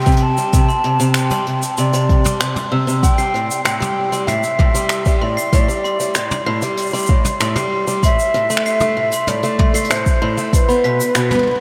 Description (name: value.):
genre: folktronica.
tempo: 96 BPM.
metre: 4/4.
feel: straight.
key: unclear.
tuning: A4 = 439 Hz.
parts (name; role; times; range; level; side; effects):
mellow hollow jazz flute; melody; 0.0-11.6 s; B4 to A5; -23 LUFS; equal; tape echo.
picked acoustic archtop guitar; arpeggios; 0.0-11.6 s; A2 to B3; -22 LUFS; equal; tape echo.
jazz brush drum kit; drums; 0.0-11.6 s; finger snaps, hi-hat, shaker, toms; -26 LUFS; equal; none.
electronic kick drum; drums; 0.1-10.7 s; none; -17 LUFS; equal; none.
glockenspiel with hard plastic mallets; second line; 0.2-11.4 s; B5 to C7; -26 LUFS; equal; tape echo.
room: wet huge ambient reverb, RT60 8.8 s.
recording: dreamy mix soaked in reverb.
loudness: -17 LUFS.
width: mono.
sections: 0.0-11.6 A section.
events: none.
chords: 0.0 Csus2; 3.0 Am7; 8.0 Dsus2; 10.5 N.C..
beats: | 0.53 1.15 1.78 2.40 | 3.03 3.65 4.28 4.90 | 5.53 6.15 6.78 7.40 | 8.03 8.65 9.28 9.90 | 10.53 11.15.